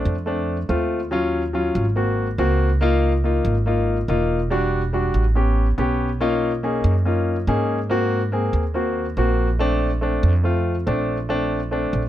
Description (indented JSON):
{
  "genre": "Afro-Cuban jazz",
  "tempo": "142 BPM",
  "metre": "4/4",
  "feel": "straight",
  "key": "unclear",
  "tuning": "A4 = 437 Hz",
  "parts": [
    { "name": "warm concert grand piano", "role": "accompaniment", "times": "0.0-12.0 s", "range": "Gb3 to Ab4", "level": "-21 LUFS", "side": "left 1 dB", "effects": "none" },
    { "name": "upright bass", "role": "bass", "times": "0.1-12.1 s", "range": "E1 to Ab2", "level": "-22 LUFS", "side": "right 1 dB", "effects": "none" }
  ],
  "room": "light reverb",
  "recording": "none",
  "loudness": "-18 LUFS",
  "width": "side -12 dB against mid",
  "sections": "0.0-12.1 A section",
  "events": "none",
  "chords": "0.0 Bbmaj7 (rootless); 1.1 Ebm9; 2.0 Ab9; 2.8 Db69; 4.5 Em7; 5.4 A9; 6.2 Bmaj9#11; 7.9 Ab9; 9.6 Bbmaj7"
}